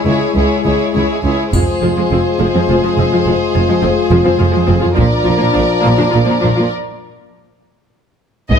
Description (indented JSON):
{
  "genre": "cinematic, epic orchestral film score",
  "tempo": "69 BPM (dotted quarters)",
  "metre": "6/8",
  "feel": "straight",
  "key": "unclear",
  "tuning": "A4 = 443 Hz",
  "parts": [
    { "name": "warm symphonic violin section", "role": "second line", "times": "0.0-8.6 s", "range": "G#4 to D5", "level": "-18 LUFS", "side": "left 1 dB", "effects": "none" },
    { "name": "rich symphonic viola section", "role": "accompaniment", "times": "0.0-8.6 s", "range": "F3 to F4", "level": "-19 LUFS", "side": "equal", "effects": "none" },
    { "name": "warm French horn section", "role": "sustained chords", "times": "0.0-8.6 s", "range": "D#3 to F4", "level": "-18 LUFS", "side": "left 5 dB", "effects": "none" },
    { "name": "rich symphonic cello section", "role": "bass", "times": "0.1-8.6 s", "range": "C#2 to A#2", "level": "-18 LUFS", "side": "right 2 dB", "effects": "none" },
    { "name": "rich symphonic double bass section", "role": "bass", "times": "0.1-8.6 s", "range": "F1 to C#2", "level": "-18 LUFS", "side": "right 3 dB", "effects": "none" },
    { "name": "taiko ensemble", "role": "drums", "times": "1.5-8.6 s", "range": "none", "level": "-18 LUFS", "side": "equal", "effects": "none" },
    { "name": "triangle", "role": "percussion", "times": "1.5-2.6 s", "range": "none", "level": "-33 LUFS", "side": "left 4 dB", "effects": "none" },
    { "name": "rich symphonic violin section", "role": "melody", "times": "8.5-8.6 s", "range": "D#5", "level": "-15 LUFS", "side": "left 4 dB", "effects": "none" }
  ],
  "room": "light reverb",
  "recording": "close, detailed microphones",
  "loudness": "-11 LUFS",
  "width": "side -7 dB against mid",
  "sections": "0.0-8.5 A section",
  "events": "break 6.7-8.5",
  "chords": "0.0 C#m; 1.5 Fm; 5.0 A#"
}